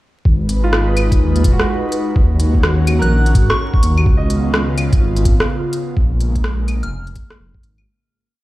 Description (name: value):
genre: future garage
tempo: 126 BPM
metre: 4/4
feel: swing 63% on 16ths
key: G# dorian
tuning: A4 = 440 Hz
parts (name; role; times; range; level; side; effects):
- airy breathy pad; sustained chords; 0.2-7.9 s; C#3 to B4; -22 LUFS; equal; chorus, phaser, sidechain pumping
- dark detuned saw bass; bass; 0.3-7.9 s; D#1 to G#2; -16 LUFS; equal; sidechain pumping
- electronic kick drum; drums; 0.3-7.6 s; none; -14 LUFS; equal; none
- organic electronic drum kit; drums; 0.5-7.9 s; claves, hi-hat, rim click; -21 LUFS; equal; none
- bright upright piano; accompaniment; 0.6-6.0 s; E#4 to D#5; -26 LUFS; right 1 dB; sidechain pumping, tape echo
- soft synth bell; melody; 3.0-7.1 s; C#6 to F#6; -25 LUFS; right 1 dB; chorus, phaser, analog delay
room: digital ambience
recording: played on a big sound system in a bare room, large studio reverb, vinyl crackle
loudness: -13 LUFS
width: side -17 dB against mid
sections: 0.3-7.9 groove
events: fade-out 5.3-7.9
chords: 0.3 G#m; 2.2 D#m7; 4.1 C#7; 6.0 A#m7